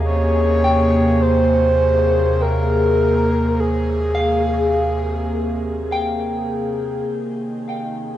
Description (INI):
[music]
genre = ambient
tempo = 51 BPM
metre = 3/4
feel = straight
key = unclear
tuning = A4 = 440 Hz
[part]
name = breathy flute-like synth lead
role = melody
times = 0.0-6.5 s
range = Ab4 to Db5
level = -21 LUFS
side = right 1 dB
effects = chorus, cassette tape, shimmer reverb, analog delay
[part]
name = evolving wavetable pad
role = sustained chords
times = 0.0-8.2 s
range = C3 to Ab4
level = -20 LUFS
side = left 2 dB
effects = chorus, built-in reverb, cassette tape, shimmer reverb
[part]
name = soft synth bell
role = arpeggios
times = 0.0-7.6 s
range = F5 to G5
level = -26 LUFS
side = left 1 dB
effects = chorus, cassette tape, shimmer reverb, analog delay
[part]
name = round analog bass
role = bass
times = 0.0-8.2 s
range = Eb2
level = -22 LUFS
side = equal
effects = none
[sound]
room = wet studio reverb, RT60 0.5 s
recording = home recording on cassette, nothing above 10.6 kHz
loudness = -16 LUFS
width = side -12 dB against mid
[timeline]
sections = 0.0-7.1 A section; 7.1-8.2 B section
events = none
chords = 0.0 Abadd9/Eb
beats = | 0.04 1.22 2.40 | 3.57 4.75 5.92 | 7.10